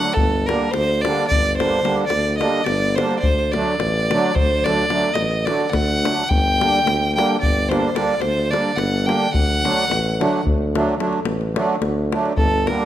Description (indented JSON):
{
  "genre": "balkan folk, Balkan wedding band",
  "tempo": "216 BPM (eighths)",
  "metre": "11/8",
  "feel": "straight",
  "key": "G harmonic minor",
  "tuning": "A4 = 440 Hz",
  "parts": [
    { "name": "rich fiddle", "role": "melody", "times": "0.0-12.9 s", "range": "A4 to G5", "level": "-20 LUFS", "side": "equal", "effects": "none" },
    { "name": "accordion", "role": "accompaniment", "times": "0.0-12.9 s", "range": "D3 to D4", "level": "-22 LUFS", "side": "right 2 dB", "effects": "light tremolo tuning" },
    { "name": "davul", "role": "percussion", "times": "0.0-12.8 s", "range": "none", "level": "-24 LUFS", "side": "left 2 dB", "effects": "none" },
    { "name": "warm tuba", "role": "bass", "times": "0.2-12.7 s", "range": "G1 to D2", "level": "-24 LUFS", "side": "equal", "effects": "none" }
  ],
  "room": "moderate recital hall reverb, RT60 1.7 s",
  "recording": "none",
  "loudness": "-17 LUFS",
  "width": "side -12 dB against mid",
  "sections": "0.0-12.9 A section",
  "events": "none",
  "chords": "0.2 Gm; 3.2 D; 6.3 Gm; 9.3 D"
}